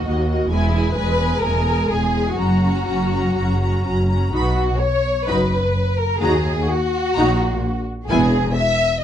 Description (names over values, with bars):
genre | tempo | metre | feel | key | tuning
quick classical-period movement for string orchestra | 128 BPM | 4/4 | rubato | unclear | A4 = 440 Hz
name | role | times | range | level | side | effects
warm symphonic violin section | melody | 0.0-8.3 s | D#5 to B5 | -29 LUFS | left 1 dB | none
warm symphonic violin section | second line | 0.0-9.0 s | E4 to E5 | -22 LUFS | left 2 dB | none
warm symphonic viola section | accompaniment | 0.0-8.3 s | G#3 to G#4 | -24 LUFS | right 1 dB | none
warm symphonic cello section | bass | 0.0-8.5 s | D#2 to B2 | -24 LUFS | equal | none
warm symphonic double bass section | bass | 0.0-8.5 s | E1 to D#2 | -22 LUFS | equal | none
room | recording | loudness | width
light reverb | dark, warm production, nothing above 10.6 kHz | -17 LUFS | side -10 dB against mid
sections
0.0-9.0 A section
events
none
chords
0.0 D#m; 0.5 E; 2.4 F#; 4.3 B; 6.2 D#m; 8.1 E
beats
0.06 | 0.52 0.99 1.45 1.92 | 2.40 2.88 3.37 3.86 | 4.35 4.82 5.29 5.76 | 6.23 6.70 7.17 7.63 | 8.09 8.56